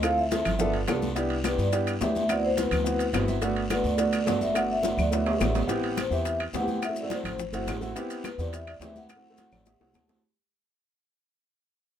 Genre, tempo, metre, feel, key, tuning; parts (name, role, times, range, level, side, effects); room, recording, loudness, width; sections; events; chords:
Afro-Cuban jazz; 212 BPM; 4/4; straight; A4 = 439 Hz
vibraphone with soft mallets; melody; 0.0-10.1 s; B4 to F#5; -29 LUFS; equal
warm grand piano; accompaniment; 0.0-10.2 s; A3 to A5; -30 LUFS; right 1 dB
upright bass; bass; 0.0-10.2 s; G1 to G2; -31 LUFS; equal
bongos; percussion; 0.0-10.2 s; -35 LUFS; left 9 dB
claves; percussion; 0.0-10.1 s; -39 LUFS; left 4 dB
congas; percussion; 0.0-10.2 s; -37 LUFS; equal
guiro; percussion; 0.0-10.2 s; -44 LUFS; left 2 dB
maracas; percussion; 0.0-10.2 s; -41 LUFS; left 5 dB
timbales; percussion; 0.0-10.2 s; -36 LUFS; right 5 dB
light reverb; minimal, uncompressed stereo recording; -24 LUFS; side -9 dB against mid
0.0-5.7 A section; 5.7-10.2 B section
grand piano fill 3.0-3.4, 9.4-10.2; drum fill 4.8-5.7, 9.5-10.2; fade-out 5.7-10.2
0.0 Dm9; 0.6 G9; 1.2 Cmaj9; 2.3 D13; 3.4 Gmaj9; 5.7 Am7; 6.8 D9 (rootless); 8.0 D13sus4; 9.1 D7